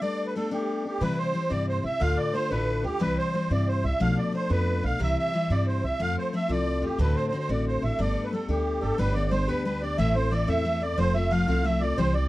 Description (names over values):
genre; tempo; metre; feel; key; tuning
celtic folk; 120 BPM (dotted quarters); 6/8; straight; G mixolydian; A4 = 445 Hz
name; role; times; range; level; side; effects
musette accordion; melody; 0.0-12.3 s; G4 to F5; -29 LUFS; right 1 dB; none
picked steel-string acoustic guitar; accompaniment; 0.0-12.3 s; D2 to G4; -28 LUFS; left 2 dB; none
upright bass; bass; 1.0-12.3 s; F1 to C3; -27 LUFS; right 1 dB; none
room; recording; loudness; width
little or no reverb; dry, close 1970s-style studio recording; -24 LUFS; side -17 dB against mid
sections
0.0-1.0 A section; 1.0-9.0 A section; 9.0-12.3 B section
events
none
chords
0.0 Gadd9; 1.0 C; 2.0 Dm; 3.0 C; 4.0 Bm7b5; 5.0 C; 6.0 F; 7.0 D7; 8.0 Gadd9; 9.0 G; 10.0 Am; 11.0 F